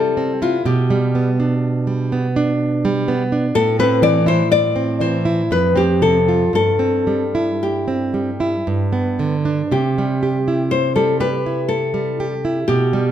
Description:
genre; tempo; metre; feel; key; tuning
romantic duo for nylon-string guitar and classical guitar; 56-64 BPM; 3/4; rubato; C major; A4 = 444 Hz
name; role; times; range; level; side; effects
nylon-string guitar; melody; 0.0-13.1 s; F4 to D5; -19 LUFS; left 4 dB; none
nylon-string guitar; accompaniment; 0.0-13.1 s; F2 to G4; -17 LUFS; right 2 dB; none
room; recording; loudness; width
moderate recital hall reverb, RT60 1.7 s; none; -15 LUFS; side -10 dB against mid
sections
0.0-13.1 A section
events
none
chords
0.0 C; 0.7 G/B; 3.5 Am; 5.5 F; 6.5 C/G; 8.7 G; 9.7 C

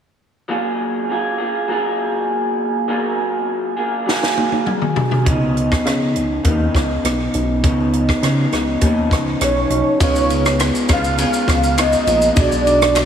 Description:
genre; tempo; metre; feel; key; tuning
indie pop, bedroom pop; 101 BPM; 4/4; straight; F# major; A4 = 440 Hz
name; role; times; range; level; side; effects
electric guitar through a small old amp; accompaniment; 0.5-13.1 s; B2 to G#4; -19 LUFS; equal; lush chorus, warbly pitch drift
compact cocktail drum kit; drums; 4.1-13.1 s; hi-hat, kick drum, ride cymbal, rim click, shaker, snare drum, toms; -19 LUFS; equal; none
chorused synth bass; bass; 5.3-13.1 s; A#1 to C#3; -20 LUFS; equal; none
soft octave-layered synth lead; melody; 9.4-13.1 s; C#5 to E#5; -17 LUFS; right 1 dB; ensemble chorus, tape echo
reed electric piano; accompaniment; 10.0-13.1 s; D4 to D5; -26 LUFS; right 4 dB; cassette tape
group handclap; percussion; 10.6-13.1 s; none; -33 LUFS; right 3 dB; none
room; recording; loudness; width
moderate lush hall reverb, RT60 2.8 s; dreamy mix soaked in reverb, small room ambience; -15 LUFS; side -8 dB against mid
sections
0.5-10.0 A section; 10.0-13.1 B section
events
drum fill 4.1-5.3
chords
0.5 F#maj9; 5.3 C#9; 10.0 C#7; 12.4 Bm6

